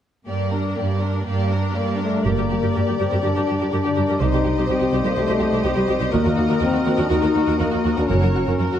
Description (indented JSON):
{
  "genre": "cinematic",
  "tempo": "123 BPM",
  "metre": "4/4",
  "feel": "straight",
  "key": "G harmonic minor",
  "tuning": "A4 = 435 Hz",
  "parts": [
    { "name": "warm symphonic violin section", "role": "melody", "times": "0.3-8.8 s", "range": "Bb4 to Eb5", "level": "-30 LUFS", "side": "left 4 dB", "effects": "none" },
    { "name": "clear symphonic violin section", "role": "second line", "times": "0.3-8.8 s", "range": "Gb4 to C5", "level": "-31 LUFS", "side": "left 1 dB", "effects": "none" },
    { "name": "warm symphonic viola section", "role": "accompaniment", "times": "0.3-8.8 s", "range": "Bb3 to G4", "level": "-27 LUFS", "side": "right 2 dB", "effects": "none" },
    { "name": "clear symphonic cello section", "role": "bass", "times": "0.3-8.8 s", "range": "C2 to G2", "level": "-23 LUFS", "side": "right 2 dB", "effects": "none" },
    { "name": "warm French horn section", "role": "sustained chords", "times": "2.0-8.8 s", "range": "G3 to Eb4", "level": "-22 LUFS", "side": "left 4 dB", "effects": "none" },
    { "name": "rich symphonic double bass section", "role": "bass", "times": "2.2-8.2 s", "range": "F#1 to Eb2", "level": "-23 LUFS", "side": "right 3 dB", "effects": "none" },
    { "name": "bright clarinet", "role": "second line", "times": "2.3-8.8 s", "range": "F#4 to G4", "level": "-31 LUFS", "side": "left 1 dB", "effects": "none" },
    { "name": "mellow cor anglais", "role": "second line", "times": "2.3-8.8 s", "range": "A#4 to D5", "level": "-30 LUFS", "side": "right 2 dB", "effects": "none" },
    { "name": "concert harp", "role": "arpeggios", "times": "2.3-8.8 s", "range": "F#2 to D5", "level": "-30 LUFS", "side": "left 7 dB", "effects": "none" }
  ],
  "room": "wet recital hall reverb, RT60 1.4 s",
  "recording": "dark, warm production",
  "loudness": "-18 LUFS",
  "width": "side -10 dB against mid",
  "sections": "0.3-2.2 A section; 2.2-8.8 B section",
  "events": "none",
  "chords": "0.3 Gm; 4.2 Cm; 6.1 Ebm; 8.1 F#"
}